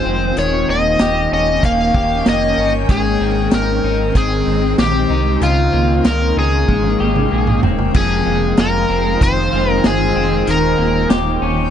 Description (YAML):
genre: dream pop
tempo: 95 BPM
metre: 4/4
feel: straight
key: Ab major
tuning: A4 = 440 Hz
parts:
  - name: overdriven slide guitar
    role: melody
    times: 0.0-11.1 s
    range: F4 to F5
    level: -18 LUFS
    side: left 2 dB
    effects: digital delay
  - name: shimmering ambient pad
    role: sustained chords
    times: 0.0-11.7 s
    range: C3 to G5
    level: -20 LUFS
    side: equal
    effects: chorus, built-in reverb
  - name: electric guitar at the edge of break-up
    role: arpeggios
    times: 0.0-11.7 s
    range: F2 to G4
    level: -20 LUFS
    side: left 2 dB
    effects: lush chorus, digital delay
  - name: sub bass with octave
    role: bass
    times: 0.1-11.7 s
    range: Eb1 to Db2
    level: -20 LUFS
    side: equal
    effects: none
  - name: vintage drum kit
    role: drums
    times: 0.4-11.3 s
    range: crash cymbal, hi-hat, kick drum, snare drum, toms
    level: -17 LUFS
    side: equal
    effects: none
room: moderate booth ambience, RT60 0.2 s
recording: nothing above 10.5 kHz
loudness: -13 LUFS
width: side -9 dB against mid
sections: 0.0-7.9 A section; 7.9-11.7 A section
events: drum fill 6.7-7.9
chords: 0.4 Eb7; 2.9 Abmaj7; 5.4 Db69; 6.7 Abmaj9; 7.9 Fm7; 10.5 Eb7